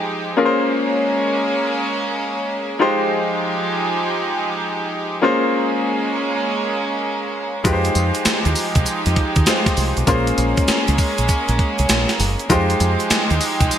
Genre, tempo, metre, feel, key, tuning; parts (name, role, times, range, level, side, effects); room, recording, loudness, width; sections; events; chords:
R&B, new jack swing; 99 BPM; 4/4; swing 65% on 16ths; A4 = 442 Hz
clear concert grand piano; accompaniment; 0.0-13.8 s; Ab3 to C5; -21 LUFS; left 2 dB
warm studio string section; sustained chords; 0.0-13.8 s; F3 to G4; -21 LUFS; right 2 dB
gated 80s digital drum machine; drums; 7.6-13.8 s; hi-hat, kick drum, snare drum, tambourine; -19 LUFS; equal; gated reverb, gated reverb snare
deep dub fingered electric bass; bass; 7.7-13.7 s; Gb1 to F2; -20 LUFS; equal
tube shaker; percussion; 7.7-13.8 s; -33 LUFS; right 12 dB
light reverb, small room ambience; bright 1980s-style digital production; -16 LUFS; side -9 dB against mid
0.0-13.8 A section
0.4 Bbm9; 2.8 Fm9; 5.2 Bbm9; 7.6 Fm9; 10.1 Bbm9; 12.5 Fm9